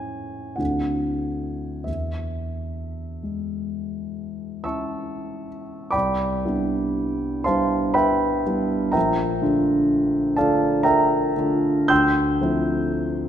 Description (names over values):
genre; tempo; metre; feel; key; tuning
classical, impressionist solo piano; 40-64 BPM; 3/4; rubato; E major, C major from 5.9 s; A4 = 435 Hz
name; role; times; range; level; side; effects
warm grand piano; solo; 0.0-13.3 s; Bb1 to G6; -21 LUFS; equal; none
room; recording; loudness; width
wet concert hall reverb, RT60 1.9 s; none; -20 LUFS; side -9 dB against mid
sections
0.0-5.9 A section; 5.9-13.3 B section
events
none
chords
0.0 A; 0.6 D9; 1.9 E6; 5.9 Cmaj9; 9.0 Bbmaj7; 11.9 Dm11